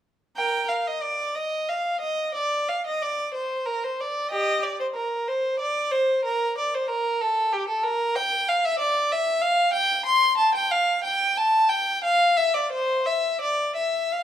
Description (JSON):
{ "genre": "classical, baroque-style suite movement for unaccompanied violin", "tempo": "53-64 BPM (dotted quarters)", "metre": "6/8", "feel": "rubato", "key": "Bb major, F major from 8.2 s", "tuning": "A4 = 441 Hz", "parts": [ { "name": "rich violin", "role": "solo", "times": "0.4-14.2 s", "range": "G4 to C6", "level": "-21 LUFS", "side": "equal", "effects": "none" } ], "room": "moderate recital hall reverb, RT60 1.5 s", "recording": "none", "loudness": "-21 LUFS", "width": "side -10 dB against mid", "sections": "0.4-14.2 A section", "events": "none", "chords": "none" }